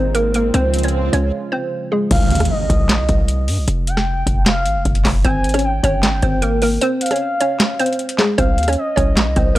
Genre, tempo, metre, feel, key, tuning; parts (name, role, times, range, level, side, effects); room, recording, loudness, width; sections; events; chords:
hip hop, trap; 153 BPM; 4/4; half-time; C phrygian; A4 = 438 Hz
hollow square pluck; melody; 0.0-2.1, 5.2-9.6 s; Ab3 to Db5; -19 LUFS; right 1 dB; chorus, low-pass filter
warm analog pad; sustained chords; 0.0-2.1 s; Bb2 to F4; -26 LUFS; right 1 dB; chorus, low-pass filter
hard-hitting 808-style bass; bass; 0.0-9.6 s; F1 to G2; -19 LUFS; equal
swell and impact; sound effects; 0.0-3.7 s; -24 LUFS; right 1 dB
booming analog drum machine; drums; 0.1-9.6 s; crash cymbal, handclaps, hi-hat, kick drum, rim click, snare drum; -18 LUFS; equal
gliding portamento lead; second line; 2.1-9.6 s; Eb5 to Ab5; -23 LUFS; left 1 dB; chorus, analog delay
little or no reverb; dry, gritty hardware recording, transformer saturation; -15 LUFS; side -16 dB against mid
0.0-2.1 A section; 2.1-9.6 B section
swell 0.0-2.1; filter sweep 0.0-2.1; break 1.3-2.1; impact 2.1-3.7; kick muted 6.8-8.4
0.0 Absus2; 0.5 Db; 2.1 Cm; 3.7 N.C.; 5.2 Absus2; 6.8 Db; 8.4 Cm